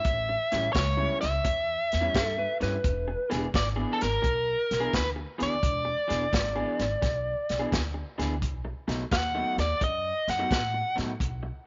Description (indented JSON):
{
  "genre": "electric blues shuffle",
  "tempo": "86 BPM",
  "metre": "4/4",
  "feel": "swing 67% on 8ths",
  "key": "E mixolydian",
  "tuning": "A4 = 442 Hz",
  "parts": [
    { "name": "biting lead guitar", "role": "melody", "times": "0.0-10.9 s", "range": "A4 to F#5", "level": "-31 LUFS", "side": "equal", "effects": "overdrive" },
    { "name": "crunchy breakbeat drum kit", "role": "drums", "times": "0.0-11.4 s", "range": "hi-hat, kick drum, snare drum", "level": "-33 LUFS", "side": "equal", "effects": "none" },
    { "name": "upright bass", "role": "bass", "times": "0.1-11.5 s", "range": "E1 to A2", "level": "-35 LUFS", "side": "equal", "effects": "none" },
    { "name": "electric guitar through a small old amp", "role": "riff", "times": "0.3-11.5 s", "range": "A2 to G#4", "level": "-36 LUFS", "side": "equal", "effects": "none" },
    { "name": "clean lap steel guitar", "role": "second line", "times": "2.2-3.4 s", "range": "A4 to B4", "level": "-35 LUFS", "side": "equal", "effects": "none" }
  ],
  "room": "moderate spring reverb, RT60 2.3 s",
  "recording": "nothing above 7.5 kHz",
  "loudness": "-28 LUFS",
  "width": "mono",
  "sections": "0.0-11.7 A section",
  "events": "none",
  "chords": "0.0 A7; 2.8 E7; 8.4 B7"
}